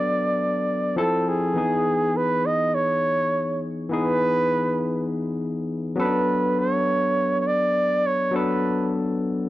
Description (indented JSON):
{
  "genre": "soul",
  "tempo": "free time",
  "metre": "none",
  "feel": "none",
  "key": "E major",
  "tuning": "A4 = 440 Hz",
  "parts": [
    { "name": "warm flugelhorn", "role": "melody", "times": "0.0-8.9 s", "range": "G#4 to D#5", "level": "-22 LUFS", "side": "right 2 dB", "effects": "none" },
    { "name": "barky tine electric piano", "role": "accompaniment", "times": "0.0-9.5 s", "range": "E3 to A4", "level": "-24 LUFS", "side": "left 2 dB", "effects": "overdrive" }
  ],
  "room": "studio reverb",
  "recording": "dry, close 1970s-style studio recording",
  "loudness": "-20 LUFS",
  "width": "side -15 dB against mid",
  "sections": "0.0-1.6 A section; 1.6-9.5 B section",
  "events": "none",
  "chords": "0.0 Bm7; 1.0 Fmaj7; 1.6 Emaj7; 6.0 Bm7"
}